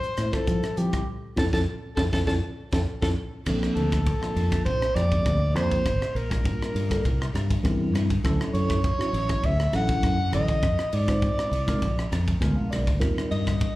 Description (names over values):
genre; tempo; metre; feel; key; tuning
electric jazz fusion; 100 BPM; 4/4; straight; F major, Bb major from 3.5 s; A4 = 440 Hz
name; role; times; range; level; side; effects
breathy soprano saxophone; melody; 0.0-13.8 s; G4 to F#5; -29 LUFS; equal; slapback echo
fingered electric bass; bass; 0.0-13.7 s; G1 to F3; -26 LUFS; equal; none
crisp fusion drum kit; drums; 0.0-13.8 s; crash cymbal, hi-hat, kick drum, ride cymbal, rim click, snare drum; -28 LUFS; equal; none
mellow tine electric piano; accompaniment; 0.3-13.5 s; D3 to Bb5; -30 LUFS; equal; phaser, slapback echo
room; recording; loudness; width
studio ambience; live gig heard through the venue's PA, club reverb; -22 LUFS; side -17 dB against mid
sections
0.0-3.5 A section; 3.5-13.8 B section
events
band accent 1.1-3.5; drum fill 2.3-3.5; tine electric piano fill 11.8-13.0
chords
0.0 Fmaj9; 3.5 Bbmaj9; 5.9 Gm7; 7.0 C9; 8.2 Dmaj9; 10.6 Fm7; 11.8 Bb7b9; 13.0 Eb69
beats
0.47 | 1.07 1.67 2.27 2.86 | 3.46 4.06 4.66 5.25 | 5.85 6.45 7.05 7.64 | 8.24 8.84 9.43 10.03 | 10.63 11.22 11.82 12.41 | 13.01 13.61